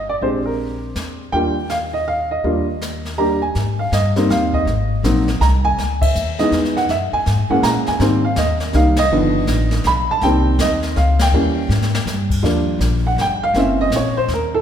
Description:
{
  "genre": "jazz piano trio",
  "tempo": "162 BPM",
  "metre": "3/4",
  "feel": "swing 63% on 8ths",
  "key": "Eb major, Ab major from 3.6 s",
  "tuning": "A4 = 440 Hz",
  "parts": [
    { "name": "warm upright piano", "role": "melody", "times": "0.0-14.6 s", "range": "D3 to B5", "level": "-18 LUFS", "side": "right 1 dB", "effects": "none" },
    { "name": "upright bass", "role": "bass", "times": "0.0-14.6 s", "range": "Gb1 to Bb2", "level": "-20 LUFS", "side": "left 1 dB", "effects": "none" },
    { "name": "jazz brush drum kit", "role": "drums", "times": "0.2-14.6 s", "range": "brushed snare drum, crash cymbal, hi-hat, kick drum, ride cymbal, snare drum", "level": "-26 LUFS", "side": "left 2 dB", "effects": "none" }
  ],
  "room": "moderate scoring stage reverb, RT60 1.9 s",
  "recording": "recorded in a church or concert hall",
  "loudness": "-15 LUFS",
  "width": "side -9 dB against mid",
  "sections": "0.0-3.6 A section; 3.6-12.4 B section; 12.4-14.6 C section",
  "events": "band accent 6.0, 8.9, 11.1; drum fill 11.7-12.1; upright piano solo 12.4-14.6",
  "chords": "0.2 Bb13; 1.3 Ebmaj9; 3.6 Abmaj9; 4.7 Ab; 5.8 Dbm9; 6.9 Gb9; 8.0 Abmaj7; 9.1 G7b13; 10.2 Cm7; 11.3 Eb7b9; 12.4 Ebmaj9; 13.6 Gb7#11"
}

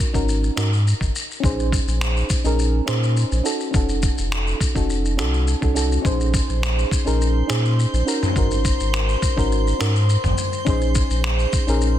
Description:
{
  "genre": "sunset chillout",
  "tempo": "104 BPM",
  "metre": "4/4",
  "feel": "straight",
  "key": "Bb minor",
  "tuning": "A4 = 438 Hz",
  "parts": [
    { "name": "mellow FM electric piano", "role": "accompaniment", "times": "0.0-12.0 s", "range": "Db4 to C5", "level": "-24 LUFS", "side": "right 1 dB", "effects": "chorus, auto-pan, low-pass filter, digital delay" },
    { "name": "dusty soul sampler-style drum kit", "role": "drums", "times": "0.0-11.9 s", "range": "finger snaps, shaker, toms", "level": "-27 LUFS", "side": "left 1 dB", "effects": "soft clipping on snare" },
    { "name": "warm sub bass", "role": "bass", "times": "0.1-12.0 s", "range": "F1 to Bb2", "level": "-20 LUFS", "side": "equal", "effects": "tube saturation" },
    { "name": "electronic kick drum", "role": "drums", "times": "0.1-11.7 s", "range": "none", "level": "-22 LUFS", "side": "equal", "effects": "none" },
    { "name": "drifting glass-harmonics texture", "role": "texture", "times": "6.6-12.0 s", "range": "C5 to C6", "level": "-29 LUFS", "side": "left 4 dB", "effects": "chorus, built-in reverb" }
  ],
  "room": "light reverb",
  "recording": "dense, heavily limited modern master",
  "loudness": "-18 LUFS",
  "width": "side -12 dB against mid",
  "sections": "0.0-12.0 A section",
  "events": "none",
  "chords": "0.0 Ab7sus4; 1.4 Bbm11; 3.5 F7b9b13; 6.1 Bbm11; 8.1 Ab7sus4; 10.7 Bbm11"
}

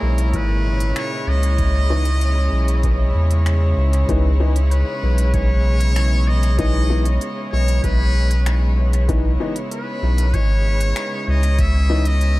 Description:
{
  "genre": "ambient dub",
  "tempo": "96 BPM",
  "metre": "4/4",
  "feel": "straight",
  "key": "C# dorian",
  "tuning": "A4 = 435 Hz",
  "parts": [
    { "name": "trumpet with metal mute", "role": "melody", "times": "0.0-12.4 s", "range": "A#4 to E5", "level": "-27 LUFS", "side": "equal", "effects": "dub echo" },
    { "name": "warm chamber string section", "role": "sustained chords", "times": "0.0-12.4 s", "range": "A#2 to C#5", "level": "-26 LUFS", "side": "equal", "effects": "none" },
    { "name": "warm sub bass", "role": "bass", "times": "0.0-12.4 s", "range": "G#1 to E2", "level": "-16 LUFS", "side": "equal", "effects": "none" },
    { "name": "drifting glass-harmonics texture", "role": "texture", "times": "0.0-4.1 s", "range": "E4", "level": "-35 LUFS", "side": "left 1 dB", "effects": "none" },
    { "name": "organic electronic drum kit", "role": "drums", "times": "0.2-12.3 s", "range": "finger snaps, hi-hat", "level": "-32 LUFS", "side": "equal", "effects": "overdrive, dub echo" },
    { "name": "electronic kick drum", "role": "drums", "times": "0.3-11.7 s", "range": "none", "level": "-23 LUFS", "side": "equal", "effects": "overdrive" },
    { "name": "warm upright piano", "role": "stabs", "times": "1.9-12.0 s", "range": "E3 to D#4", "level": "-29 LUFS", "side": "left 3 dB", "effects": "dub echo" }
  ],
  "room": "digital ambience",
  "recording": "none",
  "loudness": "-16 LUFS",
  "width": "side -19 dB against mid",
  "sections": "0.0-4.1 A section; 4.1-12.4 B section",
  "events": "none",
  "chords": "0.0 C#m9"
}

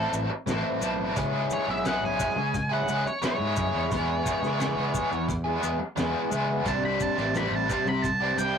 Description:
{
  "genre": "psychedelic rock",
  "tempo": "87 BPM",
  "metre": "4/4",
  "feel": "straight",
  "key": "E mixolydian",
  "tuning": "A4 = 440 Hz",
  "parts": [
    { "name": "octave-fuzz lead guitar", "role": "melody", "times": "0.0-8.6 s", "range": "A4 to B5", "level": "-30 LUFS", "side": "right 2 dB", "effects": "distortion" },
    { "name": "biting overdriven guitar", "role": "riff", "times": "0.0-8.6 s", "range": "E2 to A4", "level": "-27 LUFS", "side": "equal", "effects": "harmonic tremolo" },
    { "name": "growling fingered electric bass", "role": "bass", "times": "0.0-8.5 s", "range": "A1 to B2", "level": "-32 LUFS", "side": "equal", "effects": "overdrive" },
    { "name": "maracas", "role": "percussion", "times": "0.1-8.5 s", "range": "none", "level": "-40 LUFS", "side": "left 4 dB", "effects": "none" },
    { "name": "cloth-damped thuddy drum kit", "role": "drums", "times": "0.5-8.2 s", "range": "hi-hat, kick drum, snare drum", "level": "-33 LUFS", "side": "equal", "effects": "none" }
  ],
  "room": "wet booth ambience, RT60 0.2 s",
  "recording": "rough rehearsal-room recording, warm saturation",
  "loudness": "-24 LUFS",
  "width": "side -7 dB against mid",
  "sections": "0.0-8.6 A section",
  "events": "lead electric guitar solo 0.0-8.6",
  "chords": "0.0 Amadd9; 1.2 C#m7; 3.9 E; 6.7 Csus2"
}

